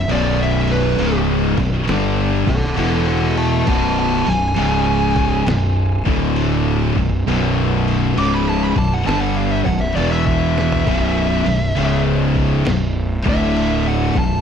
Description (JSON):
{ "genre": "stoner and doom metal", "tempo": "67 BPM", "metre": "4/4", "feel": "swing 66% on 8ths", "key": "B minor", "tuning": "A4 = 438 Hz", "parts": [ { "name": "fuzz lead guitar", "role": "melody", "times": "0.0-14.4 s", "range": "A4 to D6", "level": "-23 LUFS", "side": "equal", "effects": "distortion, tape echo" }, { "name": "fuzz guitar", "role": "riff", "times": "0.0-14.4 s", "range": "B1 to G3", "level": "-22 LUFS", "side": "left 10 dB", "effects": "distortion" }, { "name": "heavy high-gain guitar", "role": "riff", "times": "0.0-14.4 s", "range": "B1 to G3", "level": "-24 LUFS", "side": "left 1 dB", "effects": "distortion" }, { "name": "thick fuzz guitar", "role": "riff", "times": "0.0-14.4 s", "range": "B1 to G3", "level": "-21 LUFS", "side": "right 8 dB", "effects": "distortion" }, { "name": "fuzz fingered electric bass", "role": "bass", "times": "0.0-14.4 s", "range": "B0 to G1", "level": "-22 LUFS", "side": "equal", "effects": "overdrive" }, { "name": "lo-fi sampler-style drum kit", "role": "drums", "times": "0.1-14.3 s", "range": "crash cymbal, kick drum, snare drum, toms", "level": "-25 LUFS", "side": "equal", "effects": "none" } ], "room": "light reverb", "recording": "dark, warm production", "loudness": "-15 LUFS", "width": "side -7 dB against mid", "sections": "0.0-14.4 A section", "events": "lead electric guitar solo 0.0-14.4; drum fill 10.4-10.9", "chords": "0.0 Bm; 2.8 E5; 3.7 B5; 4.6 C#5; 5.5 B5; 5.9 D5; 6.8 Bm; 10.0 E5; 10.9 B5; 11.8 C#5; 12.7 B5; 13.1 D5", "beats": "| 0.10 1.00 1.89 2.79 | 3.69 4.58 5.48 6.38 | 7.27 8.17 9.07 9.97 | 10.86 11.76 12.66 13.55" }